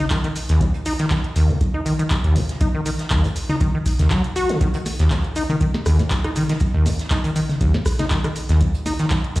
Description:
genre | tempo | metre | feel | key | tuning
acid house | 120 BPM | 4/4 | swing 54% on 16ths | Eb minor | A4 = 438 Hz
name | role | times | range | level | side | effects
acid bass, saw | riff | 0.0-9.4 s | Eb2 to Gb4 | -20 LUFS | equal | overdrive, analog chorus, sidechain pumping, tape echo
booming analog drum machine | drums | 0.0-9.4 s | handclaps, hi-hat, rim click, shaker, snare drum, toms | -26 LUFS | equal | none
electronic kick drum | drums | 0.1-9.2 s | none | -22 LUFS | equal | none
unplugged drum kit | drums | 0.1-9.4 s | hi-hat, shaker, snare drum | -38 LUFS | right 1 dB | high-pass filter on hats, high-pass filter on snare, high-pass filter on perc, high-pass filter on room
room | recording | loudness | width
light reverb, small room ambience | played on a big sound system in a bare room, large studio reverb | -17 LUFS | side -18 dB against mid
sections
0.0-9.4 A section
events
none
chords
none

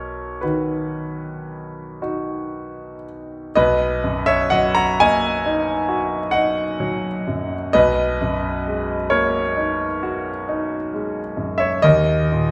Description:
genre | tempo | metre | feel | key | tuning
classical, impressionist solo piano | 38-45 BPM (dotted quarters) | 9/8 | rubato | B major | A4 = 440 Hz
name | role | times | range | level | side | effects
clear concert grand piano | solo | 0.0-12.5 s | B1 to A#5 | -21 LUFS | equal | none
room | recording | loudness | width
moderate recital hall reverb, RT60 1.4 s | recorded in a church or concert hall | -20 LUFS | mono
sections
0.0-3.5 A section; 3.5-12.5 B section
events
none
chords
0.0 Bmaj7; 11.8 D#5

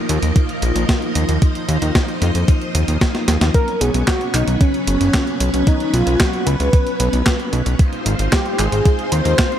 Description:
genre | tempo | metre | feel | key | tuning
italo disco | 113 BPM | 4/4 | straight | unclear | A4 = 440 Hz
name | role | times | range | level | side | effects
string machine, full ensemble | sustained chords | 0.0-9.6 s | F3 to Eb5 | -22 LUFS | equal | ensemble chorus
fat analog bass | bass | 0.1-9.3 s | F#1 to F2 | -18 LUFS | equal | none
clean 12-bit digital drum machine | drums | 0.1-9.6 s | handclaps, hi-hat, snare drum | -21 LUFS | equal | overdrive, gated reverb
electronic kick drum | drums | 0.4-9.5 s | none | -15 LUFS | equal | overdrive
wide unison lead | melody | 3.5-9.6 s | C#4 to C5 | -20 LUFS | equal | tape echo
room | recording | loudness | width
digital ambience | none | -15 LUFS | side -10 dB against mid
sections
0.0-9.6 A section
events
drum fill 3.1-3.5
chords
0.0 Ebsus2; 3.5 Bsus2; 7.8 Ab6

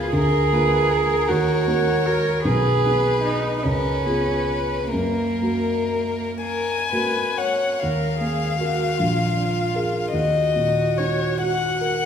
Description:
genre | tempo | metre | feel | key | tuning
classical, slow romantic movement for piano quartet | 38-54 BPM (dotted quarters) | 6/8 | rubato | F# major, Eb minor from 7.8 s | A4 = 439 Hz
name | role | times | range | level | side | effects
warm violin | melody | 0.0-12.1 s | G#4 to G#5 | -25 LUFS | left 6 dB | none
warm cello | second line | 0.0-12.1 s | A#3 to A#4 | -24 LUFS | right 4 dB | none
warm violin | second line | 0.0-7.8 s | A#4 to C#5 | -27 LUFS | left 2 dB | none
dark grand piano | accompaniment | 0.0-12.1 s | Bb1 to A#4 | -23 LUFS | equal | none
room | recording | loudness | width
wet recital hall reverb, RT60 1.7 s | recorded in a church or concert hall | -19 LUFS | side -8 dB against mid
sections
0.0-7.8 A section; 7.8-12.1 B section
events
none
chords
0.1 A#7/D; 1.3 D#m; 2.4 G#m/B; 3.6 C#7; 4.9 F#; 7.8 Ebm; 9.0 Bb7; 10.1 Ebm

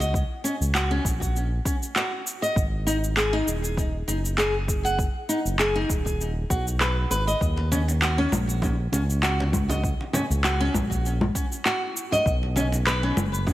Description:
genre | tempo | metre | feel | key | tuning
organic downtempo | 99 BPM | 4/4 | swing 54% on 16ths | Eb minor | A4 = 444 Hz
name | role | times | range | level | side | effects
flamenco guitar | arpeggios | 0.0-13.2 s | Db4 to Gb5 | -27 LUFS | equal | digital delay
smooth synth bass | bass | 0.0-13.5 s | Eb1 to Eb2 | -25 LUFS | equal | none
electronic cabasa, handclaps and congas | drums | 0.0-13.5 s | none | -28 LUFS | equal | none
electronic kick drum | drums | 0.1-13.5 s | none | -27 LUFS | equal | overdrive
congas | percussion | 7.6-13.5 s | none | -31 LUFS | right 1 dB | none
room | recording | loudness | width
light reverb, digital ambience | heavily compressed radio sound, multiband compression | -22 LUFS | side -15 dB against mid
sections
0.0-13.5 A section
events
none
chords
0.0 Ebm7 (rootless); 2.6 Abm7; 7.4 Ebm7; 12.3 Bsus2

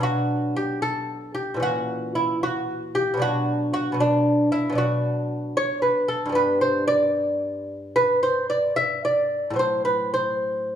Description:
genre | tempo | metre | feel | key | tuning
classical, baroque-style dance for lute | 76 BPM (dotted quarters) | 12/8 | rubato | B minor | A4 = 441 Hz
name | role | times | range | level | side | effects
lute | solo | 0.0-10.8 s | G2 to E5 | -21 LUFS | equal | none
room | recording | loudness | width
wet recital hall reverb, RT60 1.3 s | small room ambience | -21 LUFS | side -9 dB against mid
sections
0.0-10.8 A section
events
none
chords
0.0 Bm; 1.6 A#dim; 3.2 Bm; 6.4 G; 9.6 F#dim/A

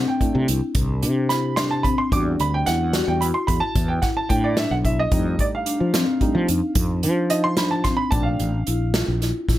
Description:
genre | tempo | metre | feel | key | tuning
progressive instrumental, band music in an uneven meter | 220 BPM (eighths) | 11/8 | straight | unclear | A4 = 440 Hz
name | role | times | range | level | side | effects
warm grand piano | accompaniment | 0.0-9.0 s | G3 to D6 | -24 LUFS | right 3 dB | none
marimba with medium mallets | arpeggios | 0.0-9.6 s | C4 to F#4 | -25 LUFS | left 2 dB | none
fretless electric bass | bass | 0.0-9.6 s | A1 to F3 | -23 LUFS | equal | analog chorus
unplugged drum kit | drums | 0.2-9.6 s | hi-hat, kick drum, snare drum | -24 LUFS | equal | none
room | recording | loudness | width
light reverb | none | -19 LUFS | side -14 dB against mid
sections
0.0-9.6 A section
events
grand piano solo 0.0-9.6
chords
0.0 C6; 2.1 Em7; 5.1 F7; 8.1 Bbmaj7

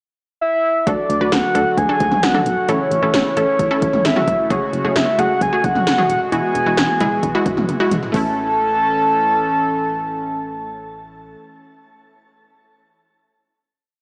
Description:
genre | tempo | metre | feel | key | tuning
synth-pop | 132 BPM | 4/4 | straight | A major | A4 = 437 Hz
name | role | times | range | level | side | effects
soft octave-layered synth lead | melody | 0.4-11.4 s | C#5 to A5 | -21 LUFS | equal | chorus, slapback echo, shimmer reverb
unison pluck | accompaniment | 0.9-11.4 s | G#3 to B4 | -24 LUFS | equal | shimmer reverb
chorused pulse-width pad | sustained chords | 0.9-11.4 s | C#3 to A4 | -28 LUFS | equal | shimmer reverb
solid FM bass | bass | 0.9-11.4 s | E1 to D2 | -27 LUFS | equal | none
80s electronic pad drums | drums | 0.9-8.2 s | hi-hat, kick drum, snare drum, toms | -23 LUFS | equal | gated reverb on snare and toms
room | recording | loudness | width
moderate scoring stage reverb, RT60 1.8 s | small speaker sound | -18 LUFS | mono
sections
0.0-0.9 pickup bar; 0.9-8.1 pre-chorus; 8.1-11.8 final chord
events
drum fill 7.7-8.1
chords
0.0 N.C.; 0.9 D; 2.7 A; 4.5 F#madd9; 6.3 Eadd9; 8.1 A

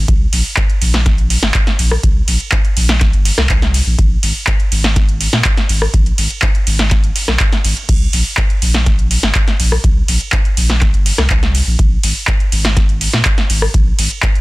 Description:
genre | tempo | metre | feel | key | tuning
acid house | 123 BPM | 4/4 | straight | unclear | A4 = 440 Hz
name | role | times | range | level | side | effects
warm sub bass | bass | 0.0-14.1 s | G1 to Bb2 | -15 LUFS | equal | sidechain pumping
electro analog drum machine | drums | 0.1-14.4 s | crash cymbal, handclaps, hi-hat, ride cymbal, rim click, snare drum | -16 LUFS | equal | none
electronic kick drum | drums | 0.1-14.3 s | none | -15 LUFS | equal | none
room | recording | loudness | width
little or no reverb | dense, heavily limited modern master | -11 LUFS | side -20 dB against mid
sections
0.0-14.4 A section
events
none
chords
none

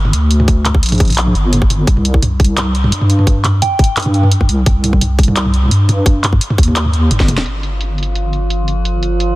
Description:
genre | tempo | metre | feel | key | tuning
half-time drum and bass | 172 BPM | 4/4 | half-time | unclear | A4 = 440 Hz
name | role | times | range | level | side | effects
deep soft wobble bass | bass | 0.0-9.4 s | G1 to G2 | -14 LUFS | equal | chorus
drum and bass drum kit | drums | 0.1-9.3 s | handclaps, hi-hat, snare drum, toms | -17 LUFS | equal | low-pass filter on snare, low-pass filter on hats, low-pass filter on toms, low-pass filter on cymbals
electronic kick drum | drums | 0.5-7.3 s | none | -12 LUFS | equal | none
soft synth bell | melody | 3.6-3.9 s | G5 | -21 LUFS | right 3 dB | chorus, phaser, vintage 12-bit sampler grit, digital delay
metallic inharmonic drone | texture | 7.8-9.4 s | F3 to F4 | -21 LUFS | right 2 dB | chorus, built-in reverb
room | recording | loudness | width
digital ambience | dense, heavily limited modern master | -11 LUFS | side -18 dB against mid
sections
0.0-7.5 A section; 7.5-9.4 B section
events
drop 0.0-7.5; drum fill 7.2; filter sweep on drum 7.5-9.4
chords
0.0 Gm; 1.9 C5; 7.5 Fsus2/G

